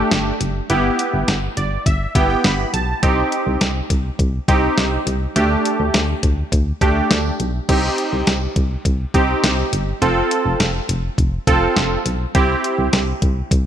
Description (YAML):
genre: synth-pop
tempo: 103 BPM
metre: 4/4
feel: straight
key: unclear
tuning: A4 = 440 Hz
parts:
  - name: warm analog keys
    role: accompaniment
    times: 0.0-13.0 s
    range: A3 to B5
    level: -19 LUFS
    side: right 2 dB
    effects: chorus
  - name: solid FM bass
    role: bass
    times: 0.0-13.7 s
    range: F1 to D2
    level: -21 LUFS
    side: equal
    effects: none
  - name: clean 12-bit digital drum machine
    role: drums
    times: 0.1-13.7 s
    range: crash cymbal, hi-hat, kick drum, snare drum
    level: -20 LUFS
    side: equal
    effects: none
room: moderate plate reverb, RT60 2.1 s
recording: bright 1980s-style digital production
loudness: -16 LUFS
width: side -10 dB against mid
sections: 0.0-7.7 A section; 7.7-13.7 B section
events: synth keys fill 1.3-3.0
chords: 0.0 Dsus4; 0.7 Em/G; 3.0 Cm; 5.4 Dsus4; 7.7 Cm; 10.0 F; 12.3 C